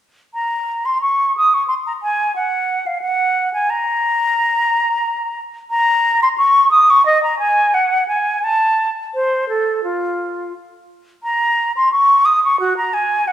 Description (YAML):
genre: classical, baroque-style fantasia for unaccompanied flute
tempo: 89 BPM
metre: 4/4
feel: rubato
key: Bb minor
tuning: A4 = 439 Hz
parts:
  - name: concert flute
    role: solo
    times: 0.3-13.3 s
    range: F4 to Eb6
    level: -14 LUFS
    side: equal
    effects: none
room: wet recital hall reverb, RT60 1.7 s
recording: recorded in a church or concert hall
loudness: -14 LUFS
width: side -11 dB against mid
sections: 0.4-13.3 A section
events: none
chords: none